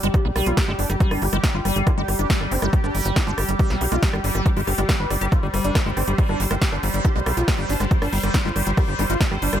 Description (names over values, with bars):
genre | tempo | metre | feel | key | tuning
psychedelic trance | 139 BPM | 4/4 | straight | G major | A4 = 435 Hz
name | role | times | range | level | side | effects
wide unison lead | melody | 0.0-9.6 s | G3 to B4 | -29 LUFS | equal | phaser, sidechain pumping, dub echo
bubbling stepped-filter texture | sustained chords | 0.0-9.6 s | G3 to C5 | -29 LUFS | equal | chorus, built-in reverb, sidechain pumping
liquid acid bass | riff | 0.0-9.6 s | G3 to G4 | -29 LUFS | moving between left 6 dB and right 5 dB | phaser, auto-pan, sidechain pumping, dub echo
tight sequencer bass | bass | 0.0-9.6 s | G1 to B1 | -24 LUFS | equal | tube saturation
big-room dance drum kit | drums | 0.0-9.6 s | hi-hat, rim click, snare drum | -27 LUFS | right 1 dB | none
electronic kick drum | drums | 0.1-9.3 s | none | -19 LUFS | equal | none
room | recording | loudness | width
little or no reverb | none | -18 LUFS | side -10 dB against mid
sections
0.0-9.6 A section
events
none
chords
0.0 G5